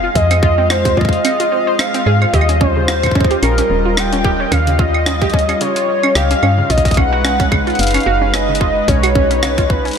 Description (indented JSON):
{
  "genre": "IDM",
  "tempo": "110 BPM",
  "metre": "4/4",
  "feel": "swing 56% on 16ths",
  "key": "unclear",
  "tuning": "A4 = 440 Hz",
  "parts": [
    { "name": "warm velvety synth lead", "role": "melody", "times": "0.0-10.0 s", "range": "Bb4 to G5", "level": "-17 LUFS", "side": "equal", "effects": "chorus, slapback echo, tape echo" },
    { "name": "warm analog pad", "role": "sustained chords", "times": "0.0-10.0 s", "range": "G3 to F5", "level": "-22 LUFS", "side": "equal", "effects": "chorus, sidechain pumping" },
    { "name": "warbly dusty pluck", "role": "arpeggios", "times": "0.0-9.9 s", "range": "C3 to C5", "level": "-21 LUFS", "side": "right 2 dB", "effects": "chorus, slapback echo, ping-pong delay" },
    { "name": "woody FM bass", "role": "bass", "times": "0.0-9.9 s", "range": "Eb1 to Ab2", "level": "-17 LUFS", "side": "equal", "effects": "tube saturation" },
    { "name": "electronic kick drum", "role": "drums", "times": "0.2-9.8 s", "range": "none", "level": "-16 LUFS", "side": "left 1 dB", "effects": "overdrive" },
    { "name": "jungle sampler-style drum kit", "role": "drums", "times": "0.2-10.0 s", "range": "claves, hi-hat, rim click", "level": "-22 LUFS", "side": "right 1 dB", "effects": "slapback echo" }
  ],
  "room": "moderate lush hall reverb, RT60 2.8 s",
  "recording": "big arena sound",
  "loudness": "-12 LUFS",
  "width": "side -7 dB against mid",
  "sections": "0.0-10.0 A section",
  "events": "none",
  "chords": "0.0 Fm7; 2.3 Ebadd9; 6.7 Cb6"
}